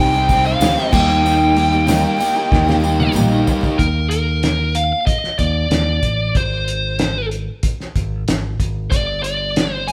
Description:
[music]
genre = folk rock and heartland rock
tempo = 94 BPM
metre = 4/4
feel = straight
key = unclear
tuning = A4 = 440 Hz
[part]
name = biting lead guitar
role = melody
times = 0.0-9.9 s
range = Bb4 to Ab5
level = -21 LUFS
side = equal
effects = overdrive
[part]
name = picked steel-string acoustic guitar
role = accompaniment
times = 0.0-3.8 s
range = C3 to G4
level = -24 LUFS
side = equal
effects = none
[part]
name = tonewheel organ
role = sustained chords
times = 0.0-3.8 s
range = Eb4 to C5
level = -31 LUFS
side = equal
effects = slow rotary speaker, overdrive
[part]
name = crunchy overdriven guitar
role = riff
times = 0.0-3.8 s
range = C3 to G4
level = -24 LUFS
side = equal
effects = none
[part]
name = modern bright fingered electric bass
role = bass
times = 0.0-9.9 s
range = G1 to Eb2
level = -22 LUFS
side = equal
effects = none
[part]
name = tambourine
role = percussion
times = 0.1-3.7 s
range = none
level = -38 LUFS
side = equal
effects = none
[part]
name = cloth-damped thuddy drum kit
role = drums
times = 0.3-9.9 s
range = crash cymbal, hi-hat, kick drum, snare drum, toms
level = -22 LUFS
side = equal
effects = none
[sound]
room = wet stone room reverb, RT60 1.2 s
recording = band playing live in one room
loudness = -17 LUFS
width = mono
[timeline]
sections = 0.0-3.8 A section; 3.8-9.9 B section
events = drum fill 2.5-3.8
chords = 0.0 Cm; 0.9 Eb; 3.8 Eb5; 6.4 Ab; 8.9 G5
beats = 0.61 | 1.24 1.88 2.52 3.15 | 3.79 4.43 5.07 5.71 | 6.35 6.99 7.63 8.27 | 8.91 9.55

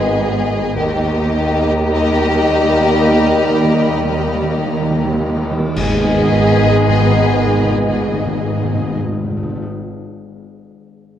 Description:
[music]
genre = cinematic, suspense film score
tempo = 98 BPM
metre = 4/4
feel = straight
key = G# harmonic minor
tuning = A4 = 439 Hz
[part]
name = warm symphonic violin section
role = melody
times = 0.0-9.0 s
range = D#5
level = -22 LUFS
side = left 3 dB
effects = none
[part]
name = warm symphonic violin section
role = second line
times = 0.0-9.0 s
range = G4 to G#4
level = -20 LUFS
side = equal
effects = none
[part]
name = dark symphonic viola section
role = accompaniment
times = 0.0-9.0 s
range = A#3 to B3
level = -24 LUFS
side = equal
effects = none
[part]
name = mellow French horn section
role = sustained chords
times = 0.0-9.0 s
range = A#3 to D#4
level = -22 LUFS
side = left 2 dB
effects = none
[part]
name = warm trombone section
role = sustained chords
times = 0.0-9.0 s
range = D#3 to G#3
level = -24 LUFS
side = right 3 dB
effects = none
[part]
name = rich symphonic double bass section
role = bass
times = 0.0-9.0 s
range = G#1 to D#2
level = -23 LUFS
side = right 2 dB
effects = none
[part]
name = warm symphonic cello section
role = bass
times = 0.0-9.0 s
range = D#2 to G#2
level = -21 LUFS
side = right 2 dB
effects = none
[part]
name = organ-like drone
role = drone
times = 0.0-9.0 s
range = G#1 to D#2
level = -28 LUFS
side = equal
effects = none
[part]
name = warm symphonic violin section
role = texture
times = 0.0-7.9 s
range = A#5 to B#6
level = -29 LUFS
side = left 4 dB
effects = none
[part]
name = timpani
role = percussion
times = 0.8-9.7 s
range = G#2 to D#3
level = -21 LUFS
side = left 1 dB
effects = none
[part]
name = cymbal swell, clash cymbals and concert bass drum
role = percussion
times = 3.2-6.9 s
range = none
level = -28 LUFS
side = equal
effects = none
[sound]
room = wet concert hall reverb, RT60 1.9 s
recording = worn, warbling old tape, cassette tape, warbly pitch drift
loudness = -13 LUFS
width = side -10 dB against mid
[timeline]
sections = 0.0-5.8 A section; 5.8-8.2 B section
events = timpani fill 0.8-5.8; band accent 5.8-6.4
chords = 0.0 G#m; 0.8 D#; 5.8 G#m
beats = 0.16 | 0.77 1.38 1.99 2.60 | 3.23 3.87 4.50 5.14 | 5.76 6.37 6.98 7.59

